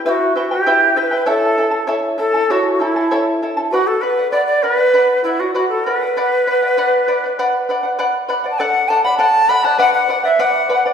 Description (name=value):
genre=andean folk, Andean ensemble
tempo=98 BPM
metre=2/4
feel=straight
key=B minor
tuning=A4 = 441 Hz
part: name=charango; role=accompaniment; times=0.0-10.9 s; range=E4 to A5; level=-18 LUFS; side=left 1 dB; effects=none
part: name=breathy bright large quena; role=melody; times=0.1-10.9 s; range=E4 to B5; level=-15 LUFS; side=equal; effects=none
room=wet recital hall reverb, RT60 1.5 s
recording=recorded in a church or concert hall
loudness=-13 LUFS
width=side -7 dB against mid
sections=0.0-8.6 A section; 8.6-10.9 B section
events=none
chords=0.0 Em; 1.3 A; 3.7 Bm; 8.6 D; 9.8 Bm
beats=| 0.04 0.66 | 1.27 1.88 | 2.50 3.11 | 3.72 4.33 | 4.94 5.55 | 6.16 6.77 | 7.38 7.98 | 8.59 9.19 | 9.80 10.40